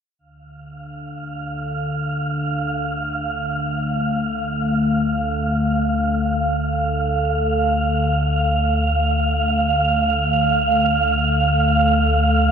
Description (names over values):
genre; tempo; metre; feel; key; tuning
dark ambient drone; free time; none; none; D minor; A4 = 440 Hz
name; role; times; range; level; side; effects
sweeping resonant pad; sustained chords; 0.2-12.5 s; D3 to A4; -24 LUFS; left 3 dB; chorus
analog drone; drone; 0.5-12.5 s; D2 to D3; -22 LUFS; left 1 dB; chorus
wind-like tuned noise texture; texture; 0.8-12.5 s; F5; -21 LUFS; right 3 dB; built-in reverb
room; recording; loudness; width
wet huge ambient reverb, RT60 8.9 s; dark, warm production; -17 LUFS; side -7 dB against mid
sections
0.2-12.5 A section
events
fade-in on synth drone 0.2-12.5; fade-in on analog synth pad 0.2-12.5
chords
0.2 D5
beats
free time